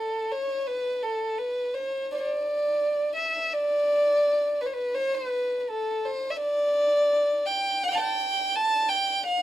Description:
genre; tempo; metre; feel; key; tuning
arabic; 84 BPM; 4/4; straight; D maqam rast; A4 = 440 Hz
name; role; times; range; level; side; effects
dark violin; solo; 0.0-9.4 s; A4 to A5; -23 LUFS; equal; none
room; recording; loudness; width
light reverb; faint mains hum; -23 LUFS; side -13 dB against mid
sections
0.0-3.5 A section; 3.5-9.4 B section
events
none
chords
none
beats
| 0.65 1.36 2.08 2.80 | 3.51 4.23 4.95 5.66 | 6.38 7.09 7.81 8.52 | 9.24

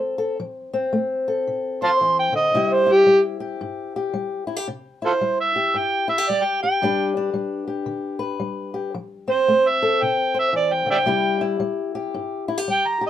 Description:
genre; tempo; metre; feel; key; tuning
acoustic country blues, solo or duo; 112 BPM; 4/4; swing 62% on 8ths; C major; A4 = 440 Hz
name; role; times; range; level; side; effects
overdriven harmonica; melody; 0.0-13.1 s; F4 to C6; -18 LUFS; right 2 dB; none
fingerpicked old ladder-braced acoustic guitar; accompaniment; 0.0-13.1 s; G2 to C5; -24 LUFS; left 4 dB; none
room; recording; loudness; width
light reverb; minimal, uncompressed stereo recording; -19 LUFS; side -11 dB against mid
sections
0.0-13.1 A section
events
none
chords
0.0 F; 2.5 C; 6.8 G; 8.9 F; 11.1 C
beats
| 0.41 0.94 1.47 2.00 | 2.53 3.06 3.60 4.13 | 4.66 5.20 5.73 6.26 | 6.80 7.33 7.86 8.40 | 8.93 9.47 10.01 10.54 | 11.08 11.62 12.15 12.69

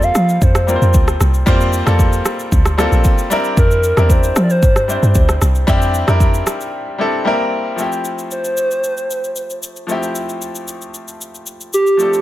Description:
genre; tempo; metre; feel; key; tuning
amapiano; 114 BPM; 4/4; straight; F major; A4 = 440 Hz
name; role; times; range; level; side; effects
hollow clarinet-like synth lead; melody; 0.0-12.2 s; G4 to F5; -17 LUFS; equal; chorus, tape echo
bright grand piano; accompaniment; 0.0-12.2 s; F3 to C5; -19 LUFS; left 1 dB; none
deep log drum bass; bass; 0.0-6.4 s; Bb1 to F3; -14 LUFS; equal; none
deep house drum kit; drums; 0.0-12.2 s; kick drum, rim click, shaker; -16 LUFS; equal; none
room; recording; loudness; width
digital ambience; none; -13 LUFS; side -14 dB against mid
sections
0.0-7.8 A section; 7.8-12.2 B section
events
drop 0.0-7.8; break 6.7-7.8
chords
0.0 Gm11; 3.3 C9; 7.3 C7; 7.8 Fmaj9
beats
0.42 0.94 | 1.47 2.00 2.52 3.05 | 3.57 4.10 4.63 5.15 | 5.68 6.21 6.73 7.26 | 7.78 8.31 8.84 9.36 | 9.89 10.42 10.94 11.47 | 11.99

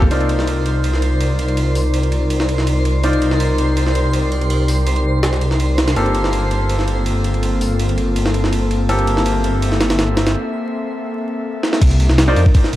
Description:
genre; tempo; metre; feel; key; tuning
drum and bass, jungle; 164 BPM; 4/4; straight; C dorian; A4 = 438 Hz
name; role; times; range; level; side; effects
airy breathy pad; sustained chords; 0.0-12.8 s; Bb3 to E5; -23 LUFS; left 1 dB; chorus
detuned saw bass; bass; 0.0-12.8 s; G1 to F2; -17 LUFS; equal; none
jungle sampler-style drum kit; drums; 0.0-12.8 s; crash cymbal, hi-hat, kick drum, ride cymbal, snare drum; -20 LUFS; equal; high-pass filter on cymbals, high-pass filter on kick, high-pass filter on snare, high-pass filter on hats, high-pass filter on room
twinkling granular texture; texture; 0.0-12.8 s; C5 to D6; -28 LUFS; right 2 dB; built-in reverb
clear concert grand piano; stabs; 0.1-12.4 s; Bb3 to D5; -23 LUFS; left 1 dB; vintage 12-bit sampler grit, dub echo
crunchy breakbeat drum kit; drums; 11.8-12.8 s; hi-hat, snare drum; -36 LUFS; right 2 dB; none
room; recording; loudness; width
light reverb; dark, warm production, vinyl crackle; -14 LUFS; side -14 dB against mid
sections
0.1-11.8 A section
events
filter sweep on analog synth pad 0.1-11.8; break 10.4-11.8; drum fill 11.6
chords
0.1 Cm11; 6.0 Gm11; 11.8 Cm11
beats
| 0.11 0.48 0.84 1.21 | 1.57 1.94 2.31 2.67 | 3.04 3.40 3.77 4.13 | 4.50 4.87 5.23 5.60 | 5.96 6.33 6.70 7.06 | 7.43 7.79 8.16 8.53 | 8.89 9.26 9.62 9.99 | 10.35 10.72 11.09 11.45 | 11.82 12.18 12.55

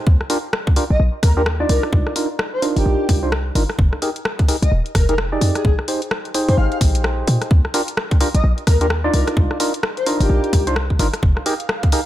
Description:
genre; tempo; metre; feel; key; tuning
UK garage, two-step garage; 129 BPM; 4/4; swing 60% on 16ths; F dorian; A4 = 442 Hz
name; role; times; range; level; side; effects
percussive organ stab; stabs; 0.0-12.0 s; D4 to D5; -22 LUFS; right 1 dB; wide subtle chorus, digital delay
short 808-style bass; bass; 0.1-11.3 s; Eb1 to Bb2; -18 LUFS; equal; none
electronic kick drum; drums; 0.1-11.9 s; none; -16 LUFS; equal; studio reverb
garage drum kit; drums; 0.2-12.0 s; hi-hat, rim click; -24 LUFS; left 1 dB; studio reverb
breathy flute-like synth lead; melody; 0.9-10.7 s; G4 to F5; -24 LUFS; left 1 dB; analog chorus, digital delay
ethereal airy pad; sustained chords; 11.4-12.1 s; F5; -31 LUFS; right 4 dB; ensemble chorus, built-in reverb, sidechain pumping
room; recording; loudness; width
digital ambience; none; -16 LUFS; side -13 dB against mid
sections
0.0-12.1 A section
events
none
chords
0.1 Ebmaj9; 1.7 Cm11; 3.8 Fm11; 5.6 Bb13sus4; 7.5 Ebmaj9; 9.1 Cm11; 11.2 Fm11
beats
| 0.07 0.53 1.00 1.46 | 1.93 2.39 2.86 3.32 | 3.79 4.25 4.72 5.18 | 5.65 6.11 6.58 7.04 | 7.51 7.97 8.44 8.90 | 9.37 9.83 10.30 10.76 | 11.23 11.69

